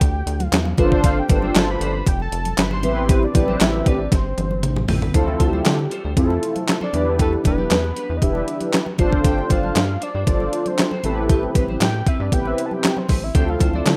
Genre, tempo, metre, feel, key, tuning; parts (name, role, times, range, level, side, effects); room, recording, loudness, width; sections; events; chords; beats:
early-eighties boogie funk; 117 BPM; 4/4; straight; D dorian; A4 = 439 Hz
fat analog lead; melody; 0.0-14.0 s; G4 to C6; -30 LUFS; equal; chorus, slapback echo
clean electric guitar; riff; 0.0-13.9 s; C4 to D5; -35 LUFS; equal; ensemble chorus
rubbery square bass; bass; 0.0-14.0 s; E1 to D3; -26 LUFS; equal
clean 12-bit digital drum machine; drums; 0.0-14.0 s; handclaps, hi-hat, kick drum, snare drum, toms; -21 LUFS; equal; overdrive
congas; percussion; 0.0-14.0 s; -34 LUFS; equal
mellow synth brass; accompaniment; 0.8-14.0 s; B3 to C5; -24 LUFS; equal; chorus
digital ambience; rough home demo mix; -19 LUFS; mono
0.0-5.1 A section; 5.1-14.0 B section
drum fill 4.1-5.1; analog synth lead solo 5.1-14.0
0.0 Em7; 0.8 G7sus4; 2.8 Am9; 5.1 Dm7; 6.9 Em7; 9.0 G7sus4; 11.0 Am9; 13.3 Dm7
0.01 0.53 | 1.04 1.55 2.07 2.58 | 3.09 3.60 4.12 4.63 | 5.14 5.66 6.17 6.68 | 7.20 7.71 8.22 8.73 | 9.25 9.76 10.27 10.78 | 11.30 11.81 12.32 12.84 | 13.35 13.86